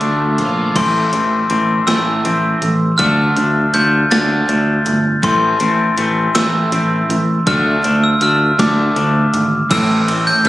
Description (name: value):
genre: indie rock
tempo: 54 BPM (dotted quarters)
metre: 6/8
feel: straight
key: D minor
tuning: A4 = 441 Hz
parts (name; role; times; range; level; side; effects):
- glockenspiel with hard plastic mallets; melody; 0.0-10.4 s; C6 to A6; -16 LUFS; left 1 dB; slapback echo
- overdriven semi-hollow guitar; riff; 0.0-10.5 s; A2 to F4; -20 LUFS; right 2 dB; analog chorus, slapback echo
- twangy electric guitar; riff; 0.0-10.5 s; E3 to D4; -21 LUFS; left 3 dB; none
- modern bright fingered electric bass; bass; 0.0-10.5 s; G1 to D2; -18 LUFS; equal; none
- gated 80s digital drum machine; drums; 0.0-10.5 s; crash cymbal, hi-hat, kick drum, ride cymbal, snare drum; -20 LUFS; equal; gated reverb, gated reverb snare, overdrive
- tambourine; percussion; 9.7-10.4 s; none; -31 LUFS; right 1 dB; none
room: little or no reverb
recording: recorded on a phone in the room, studio reverb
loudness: -12 LUFS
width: side -15 dB against mid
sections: 0.8-9.7 A section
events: none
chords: 0.0 Dm; 0.8 Am; 3.0 Dm; 5.2 Am; 7.5 Dm; 9.7 Am